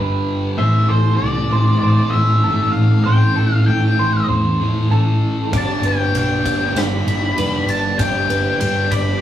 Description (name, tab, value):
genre	rock, shoegaze and dream pop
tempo	97 BPM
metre	4/4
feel	straight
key	A minor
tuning	A4 = 440 Hz
part	clean electric guitar	arpeggios	0.0-9.2 s	A4 to D5	-25 LUFS	right 3 dB	none
part	overdriven electric guitar	riff	0.0-9.2 s	G2 to A4	-25 LUFS	right 3 dB	none
part	thick fuzz guitar	riff	0.0-9.2 s	G2 to A3	-20 LUFS	left 1 dB	distortion
part	vintage muted fingered electric bass	bass	0.0-9.2 s	F1 to A2	-19 LUFS	equal	none
part	octave-fuzz lead guitar	melody	0.6-9.2 s	C5 to B5	-21 LUFS	left 2 dB	distortion
part	string machine, violins	sustained chords	5.5-9.2 s	G3 to D5	-31 LUFS	left 2 dB	ensemble chorus
part	huge arena drum kit	drums	5.5-9.1 s	kick drum, ride cymbal, snare drum	-25 LUFS	right 1 dB	none
room	wet small room reverb, RT60 0.5 s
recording	rough rehearsal-room recording, warm saturation, small room ambience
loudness	-14 LUFS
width	side -11 dB against mid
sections	0.0-9.2 A section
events	none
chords	0.0 G; 0.6 Am7; 5.5 G